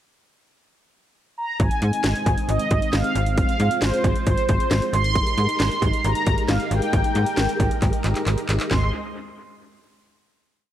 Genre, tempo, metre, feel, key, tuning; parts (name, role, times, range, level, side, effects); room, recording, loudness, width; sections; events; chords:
synth-pop; 135 BPM; 4/4; straight; Ab major; A4 = 440 Hz
mellow synth brass; melody; 1.4-8.9 s; C5 to C6; -25 LUFS; right 1 dB; chorus, analog delay
string machine, full ensemble; sustained chords; 1.7-8.9 s; Ab3 to Bb4; -28 LUFS; equal; ensemble chorus
slap-like FM bass; bass; 1.6-8.9 s; Ab1 to Ab2; -22 LUFS; equal
house drum kit; drums; 1.6-8.8 s; handclaps, hi-hat, kick drum, snare drum, toms; -24 LUFS; equal; overdrive, analog delay
light reverb, digital ambience; echo-heavy mix; -19 LUFS; side -11 dB against mid
0.0-1.6 pickup bar; 1.6-8.7 verse; 8.7-10.5 final chord
drum fill 7.8-8.7
0.0 N.C.; 1.6 Ab; 3.2 Fm/Ab; 4.9 Eb/Ab; 8.7 Ab